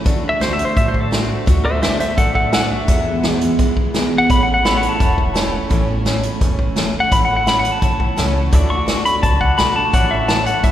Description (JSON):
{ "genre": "honky-tonk and classic country", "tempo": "170 BPM", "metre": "4/4", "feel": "straight", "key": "A major", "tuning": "A4 = 440 Hz", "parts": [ { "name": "picked steel-string acoustic guitar", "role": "accompaniment", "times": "0.0-10.7 s", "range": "E2 to F#4", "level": "-22 LUFS", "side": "equal", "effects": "none" }, { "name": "upright bass", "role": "bass", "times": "0.1-10.7 s", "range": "E1 to E2", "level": "-22 LUFS", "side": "equal", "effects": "none" }, { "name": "unplugged drum kit", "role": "drums", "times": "0.1-10.7 s", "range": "hi-hat, kick drum, snare drum", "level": "-18 LUFS", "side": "equal", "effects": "none" }, { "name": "pedal steel guitar", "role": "melody", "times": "0.3-10.7 s", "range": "A4 to C#6", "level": "-18 LUFS", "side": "left 1 dB", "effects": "none" }, { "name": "pedal steel guitar", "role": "sustained chords", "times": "4.7-10.7 s", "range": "E4 to D5", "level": "-29 LUFS", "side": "equal", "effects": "none" } ], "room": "wet church reverb, RT60 3.5 s", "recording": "recorded in a church or concert hall", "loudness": "-14 LUFS", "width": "side -11 dB against mid", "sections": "0.0-10.7 A section", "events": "pedal steel guitar solo 0.0-10.7", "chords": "0.1 D; 2.9 E; 4.3 A; 8.5 D; 9.9 A", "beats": "| 0.06 0.41 0.77 1.12 | 1.47 1.83 2.18 2.53 | 2.89 3.24 3.59 3.95 | 4.30 4.65 5.00 5.36 | 5.71 6.06 6.42 6.77 | 7.12 7.47 7.82 8.18 | 8.53 8.88 9.23 9.58 | 9.94 10.29 10.64" }